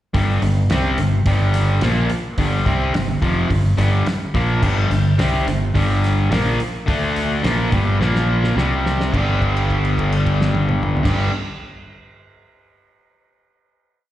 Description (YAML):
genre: classic rock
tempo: 107 BPM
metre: 4/4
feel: straight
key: unclear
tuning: A4 = 441 Hz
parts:
  - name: distorted electric guitar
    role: riff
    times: 0.1-11.3 s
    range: F2 to D4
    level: -21 LUFS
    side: left 4 dB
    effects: distortion, slapback echo
  - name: sludgy distorted guitar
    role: riff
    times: 0.1-11.3 s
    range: F2 to G4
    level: -24 LUFS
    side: right 8 dB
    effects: overdrive, slapback echo
  - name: fingered electric bass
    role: bass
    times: 0.1-11.3 s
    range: F1 to D2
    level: -19 LUFS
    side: equal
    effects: none
  - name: damped 70s drum kit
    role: drums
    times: 0.1-11.2 s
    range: crash cymbal, hi-hat, kick drum, snare drum, toms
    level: -24 LUFS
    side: equal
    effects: none
room: small room ambience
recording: live gig heard through the venue's PA, recital hall reverb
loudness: -16 LUFS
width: side -13 dB against mid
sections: 0.1-9.1 riff; 9.1-11.4 final chord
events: drum fill 8.0-9.1; held note 9.1-11.0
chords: 0.1 G5; 6.9 D5; 7.4 G5; 8.0 Bb5; 8.6 C5; 9.1 G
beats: | 0.14 0.70 1.26 1.82 | 2.38 2.94 3.50 4.06 | 4.63 5.19 5.75 6.32 | 6.88 7.44 8.01 8.57 | 9.13 9.70 10.26 10.82